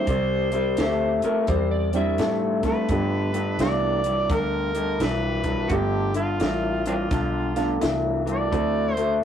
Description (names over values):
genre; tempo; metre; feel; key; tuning
electric blues shuffle; 85 BPM; 4/4; swing 63% on 8ths; G mixolydian; A4 = 440 Hz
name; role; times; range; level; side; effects
overdriven harmonica; melody; 0.0-9.2 s; C4 to D5; -27 LUFS; right 2 dB; none
reed electric piano; accompaniment; 0.0-8.9 s; G3 to F5; -28 LUFS; right 4 dB; none
electric guitar through a small old amp; riff; 0.0-9.2 s; G2 to A3; -25 LUFS; left 3 dB; none
vintage muted fingered electric bass; bass; 0.1-9.2 s; G1 to A2; -30 LUFS; equal; none
compact cocktail drum kit; drums; 0.1-9.1 s; hi-hat, kick drum, snare drum; -28 LUFS; equal; none
electric slide guitar; second line; 0.8-2.4 s; G4 to E5; -29 LUFS; right 2 dB; none
room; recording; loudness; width
moderate studio ambience, RT60 0.5 s; rough rehearsal-room recording, tube saturation; -21 LUFS; side -9 dB against mid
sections
0.0-9.2 A section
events
none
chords
0.1 Cadd9; 2.9 G9; 8.5 D9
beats
| 0.08 0.79 1.49 2.19 | 2.90 3.60 4.30 5.01 | 5.71 6.42 7.12 7.82 | 8.53